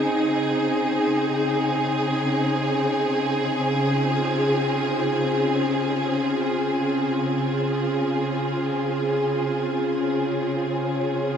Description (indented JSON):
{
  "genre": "ambient",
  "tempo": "free time",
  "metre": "none",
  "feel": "none",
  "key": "Db major",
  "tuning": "A4 = 439 Hz",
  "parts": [
    { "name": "warm symphonic string section", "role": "sustained chords", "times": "0.0-11.4 s", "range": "Db3 to Ab4", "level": "-21 LUFS", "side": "equal", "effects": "shimmer reverb" },
    { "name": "overtone-sweeping drone", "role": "drone", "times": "4.7-11.4 s", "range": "Db3", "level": "-29 LUFS", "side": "equal", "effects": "chorus, built-in reverb" }
  ],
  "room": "wet lush hall reverb, RT60 2.7 s",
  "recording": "dreamy mix soaked in reverb",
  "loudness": "-21 LUFS",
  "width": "side -8 dB against mid",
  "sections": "0.0-3.5 A section; 3.5-11.4 B section",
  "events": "none",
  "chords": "0.0 Dbmaj7(no3); 3.5 Dbmaj7",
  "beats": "free time"
}